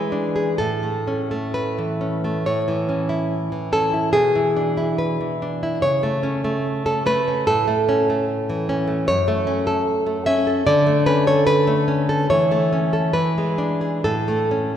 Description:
romantic piece for solo classical guitar; 61-77 BPM; 2/4; rubato; A major; A4 = 438 Hz
nylon-string guitar; solo; 0.0-14.8 s; F#2 to E5; -18 LUFS; equal
wet church reverb, RT60 2.6 s; recorded in a church or concert hall; -18 LUFS; side -9 dB against mid
0.0-2.5 A section; 2.5-14.8 A section
0.0 E7; 0.6 A; 4.1 E7/B; 5.8 A/C#; 7.5 A; 9.1 F#m; 10.7 D5; 12.3 A/E; 13.1 E7; 14.1 A

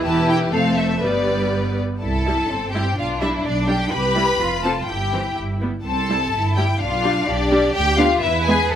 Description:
quick classical-period movement for string orchestra; 125 BPM; 2/4; rubato; C major; A4 = 440 Hz
rich studio violin section; second line; 0.0-8.7 s; D4 to D5; -24 LUFS; left 2 dB
warm studio viola section; accompaniment; 0.0-8.6 s; E3 to E4; -23 LUFS; right 2 dB
rich studio violin section; melody; 0.1-8.8 s; D5 to B5; -23 LUFS; left 4 dB
clear studio double bass section; bass; 0.1-8.8 s; E1 to E2; -24 LUFS; right 2 dB
rich studio cello section; bass; 0.1-8.8 s; E2 to B4; -25 LUFS; right 1 dB
moderate recital hall reverb, RT60 1.6 s; close, detailed microphones; -17 LUFS; side -10 dB against mid
0.0-2.0 A section; 2.0-8.8 B section
0.1 Em; 0.5 F; 1.0 G; 2.0 C; 3.0 G/B; 3.9 C; 4.4 F; 4.9 C/G; 5.4 G; 5.9 C; 6.8 G7/B; 7.8 Bdim/D; 8.2 E

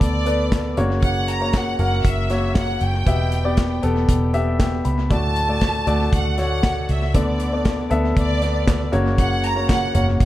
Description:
piano-driven pop; 118 BPM; 4/4; straight; A4 = 440 Hz
clear studio violin section; melody; 0.0-10.2 s; D5 to A#5; -25 LUFS; right 1 dB; tape echo
warm baby grand piano; accompaniment; 0.0-10.2 s; A2 to B5; -23 LUFS; left 1 dB
vintage muted fingered electric bass; bass; 0.0-10.2 s; E1 to D2; -22 LUFS; equal
modern studio drum kit; drums; 0.0-10.2 s; handclaps, hi-hat, kick drum, snare drum, toms; -22 LUFS; equal; tape echo
light reverb, small room reverb; echo-heavy mix; -17 LUFS; side -14 dB against mid
0.0-10.2 A section
grand piano fill 4.1-5.1
0.0 Bm7/D; 0.8 F#; 3.1 Em; 5.1 D; 7.1 Bm7/D; 8.9 F#

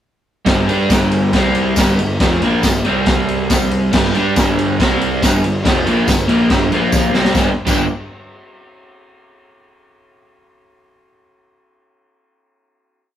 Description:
garage rock duo or trio; 140 BPM; 4/4; straight; A4 = 439 Hz
crunchy overdriven guitar; riff; 0.5-7.8 s; F2 to G4; -16 LUFS; equal
fuzz picked electric bass; bass; 0.5-7.9 s; F1 to G2; -22 LUFS; equal; overdrive
raw garage drum kit; drums; 0.5-7.8 s; crash cymbal, kick drum, ride cymbal, snare drum; -16 LUFS; equal
tambourine; percussion; 0.9-7.9 s; -28 LUFS; left 2 dB
light reverb; rough rehearsal-room recording, warm saturation; -12 LUFS; side -10 dB against mid
0.5-7.4 riff; 7.4-9.1 final chord
drum fill 6.9-7.4
0.5 G5; 1.3 C5; 1.8 G5; 2.9 C5; 3.9 G5; 4.8 C5; 5.2 G5; 6.7 Bb5; 7.1 C5; 7.4 G

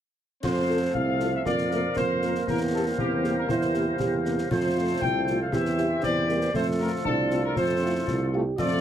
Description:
military-style march for wind band; 118 BPM; 2/4; straight; F major; A4 = 444 Hz
dark trumpet section; melody; 0.4-8.8 s; G4 to G5; -29 LUFS; left 1 dB
warm euphonium; second line; 0.4-8.8 s; A3 to G4; -30 LUFS; right 4 dB
warm woodwind section; second line; 0.4-8.8 s; F4 to F5; -34 LUFS; left 2 dB
dark trombone section; sustained chords; 0.4-8.8 s; E3 to C4; -35 LUFS; left 1 dB
mellow tuba; bass; 0.4-8.8 s; C2 to F2; -27 LUFS; right 1 dB
concert snare drum, clash cymbals and concert bass drum; drums; 0.4-8.8 s; -34 LUFS; left 2 dB
mellow French horn section; accompaniment; 0.7-8.4 s; G3 to Bb4; -30 LUFS; left 2 dB
light reverb; heavily compressed radio sound, multiband compression; -23 LUFS; side -10 dB against mid
0.4-8.8 A section
0.4 F; 1.5 Bb/F; 2.5 C7/E; 4.5 F; 5.5 C/E; 6.5 F

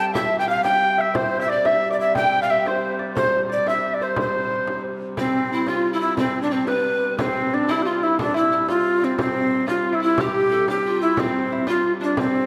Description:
medieval dance; 120 BPM (dotted quarters); 6/8; straight; C major; A4 = 439 Hz
tenor recorder; melody; 0.0-12.5 s; C4 to G5; -23 LUFS; equal
lute; second line; 0.0-12.5 s; B3 to G5; -31 LUFS; equal
pan flute; second line; 0.0-12.5 s; C4 to A5; -30 LUFS; equal
dark hurdy-gurdy; drone; 0.0-12.5 s; C3 to G3; -34 LUFS; equal
frame drum; percussion; 0.1-12.3 s; -33 LUFS; equal
wet concert hall reverb, RT60 2.1 s; recorded in a church or concert hall; -21 LUFS; mono
0.0-5.2 A section; 5.2-12.5 B section

